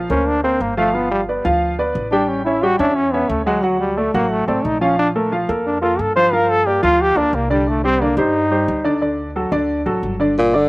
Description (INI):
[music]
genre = latin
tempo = 178 BPM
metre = 4/4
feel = straight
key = G minor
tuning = A4 = 440 Hz
[part]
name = warm concert grand piano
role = accompaniment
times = 0.0-10.7 s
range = D3 to D6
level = -19 LUFS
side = equal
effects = none
[part]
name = upright bass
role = bass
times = 0.0-10.7 s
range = G1 to G2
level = -26 LUFS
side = equal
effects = none
[part]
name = bright trombone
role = melody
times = 0.1-9.0 s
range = F#3 to C5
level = -17 LUFS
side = equal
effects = slapback echo
[part]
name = breathy tenor saxophone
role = melody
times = 10.4-10.7 s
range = Bb2 to D3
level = -13 LUFS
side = equal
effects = none
[sound]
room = little or no reverb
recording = recorded outdoors, with no room sound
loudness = -15 LUFS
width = side -22 dB against mid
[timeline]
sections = 0.0-10.4 A section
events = trombone solo 0.0-10.4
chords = 0.0 Bbadd9; 0.9 G7; 2.3 A7; 3.6 D; 5.0 Bb5; 6.3 Gm7; 7.7 Cmadd9; 9.0 D